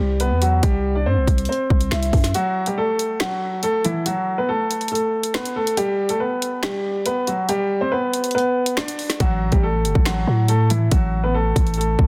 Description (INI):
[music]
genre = hip hop, drill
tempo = 140 BPM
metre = 4/4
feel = half-time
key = unclear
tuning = A4 = 444 Hz
[part]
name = warm upright piano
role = melody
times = 0.0-12.1 s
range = E3 to E5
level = -24 LUFS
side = equal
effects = low-pass filter
[part]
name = growling 808-style bass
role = bass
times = 0.0-2.3, 9.2-12.1 s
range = G1 to A2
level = -22 LUFS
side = equal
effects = none
[part]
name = drill drum kit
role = drums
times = 0.2-12.1 s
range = finger snaps, hi-hat, kick drum, snare drum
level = -24 LUFS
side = equal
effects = none
[sound]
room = light reverb, digital ambience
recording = dense, heavily limited modern master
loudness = -20 LUFS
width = mono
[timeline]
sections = 0.0-12.1 A section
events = break 2.3-9.2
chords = 0.0 C; 2.3 N.C.; 5.8 G; 9.2 A5